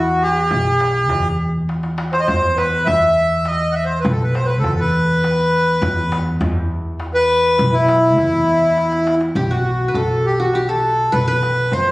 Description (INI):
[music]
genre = Arabic maqam ensemble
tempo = 102 BPM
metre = 3/4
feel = straight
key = E maqam suznak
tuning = A4 = 440 Hz
[part]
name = accordion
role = melody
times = 0.0-11.9 s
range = E4 to F#5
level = -16 LUFS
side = equal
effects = none
[part]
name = upright bass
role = bass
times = 0.0-11.9 s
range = B1 to F#2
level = -20 LUFS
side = equal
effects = none
[part]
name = darbuka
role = percussion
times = 0.5-11.9 s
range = none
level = -28 LUFS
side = left 1 dB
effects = none
[part]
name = qanun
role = second line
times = 9.4-11.9 s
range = F#4 to C5+25c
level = -23 LUFS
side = equal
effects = none
[sound]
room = wet recital hall reverb, RT60 1.5 s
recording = recorded on a phone in the room, club reverb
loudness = -15 LUFS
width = side -19 dB against mid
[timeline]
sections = 0.0-9.4 A section; 9.4-11.9 B section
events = drum fill 1.7-2.3, 8.8-9.4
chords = none